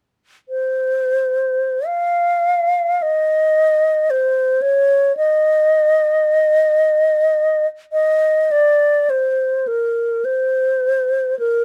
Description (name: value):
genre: classical, free, expressive piece for unaccompanied alto flute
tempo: 34-57 BPM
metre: 3/4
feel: rubato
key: unclear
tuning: A4 = 440 Hz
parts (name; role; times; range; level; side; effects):
- alto flute; solo; 0.5-11.6 s; Bb4 to F5; -17 LUFS; equal; none
room: little or no reverb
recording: close, detailed microphones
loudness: -17 LUFS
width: mono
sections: 0.5-7.9 A section; 7.9-11.6 B section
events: none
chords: none